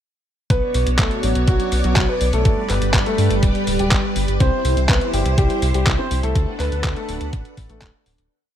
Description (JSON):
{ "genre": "italo disco", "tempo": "123 BPM", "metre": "4/4", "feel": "straight", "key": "B minor", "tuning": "A4 = 440 Hz", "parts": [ { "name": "warm concert grand piano", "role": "melody", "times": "0.5-7.9 s", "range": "F#3 to C5", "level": "-24 LUFS", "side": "equal", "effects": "digital delay" }, { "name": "string machine, full ensemble", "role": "sustained chords", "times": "0.5-8.3 s", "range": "G3 to F#5", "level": "-24 LUFS", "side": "equal", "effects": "ensemble chorus" }, { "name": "round analog bass", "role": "bass", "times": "0.5-8.3 s", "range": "D1 to G2", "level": "-21 LUFS", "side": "equal", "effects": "none" }, { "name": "detuned 8-bit digital drum machine", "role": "drums", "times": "0.5-8.3 s", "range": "handclaps, hi-hat", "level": "-25 LUFS", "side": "equal", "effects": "overdrive" }, { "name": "electronic kick drum", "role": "drums", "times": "0.5-7.9 s", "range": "none", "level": "-19 LUFS", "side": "equal", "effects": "overdrive" } ], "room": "digital ambience", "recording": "none", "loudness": "-16 LUFS", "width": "side -10 dB against mid", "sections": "0.5-8.3 chorus", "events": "fade-out 5.7-8.3", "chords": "0.5 Bmadd9; 2.5 G; 4.4 C; 6.4 D6" }